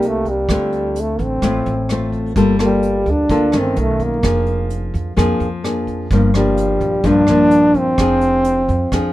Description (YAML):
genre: bossa nova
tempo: 128 BPM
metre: 4/4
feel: straight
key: G minor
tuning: A4 = 441 Hz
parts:
  - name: breathy trombone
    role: melody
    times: 0.0-9.1 s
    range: G3 to D4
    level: -16 LUFS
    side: equal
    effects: none
  - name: nylon-string guitar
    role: accompaniment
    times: 0.0-9.1 s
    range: G2 to A4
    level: -18 LUFS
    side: left 2 dB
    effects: none
  - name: upright bass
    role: bass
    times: 0.0-9.1 s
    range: F1 to F2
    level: -22 LUFS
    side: right 1 dB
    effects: none
  - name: vintage brush drum kit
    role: drums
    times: 0.0-9.0 s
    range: hi-hat, kick drum, rim click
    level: -25 LUFS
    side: right 1 dB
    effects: none
room: light reverb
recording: minimal, uncompressed stereo recording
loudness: -14 LUFS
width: side -15 dB against mid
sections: 0.0-9.1 A section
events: none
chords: 0.5 Dm7; 2.4 Gm9; 3.8 B9; 4.2 Bb7/F; 6.1 Gm7; 8.0 Fm6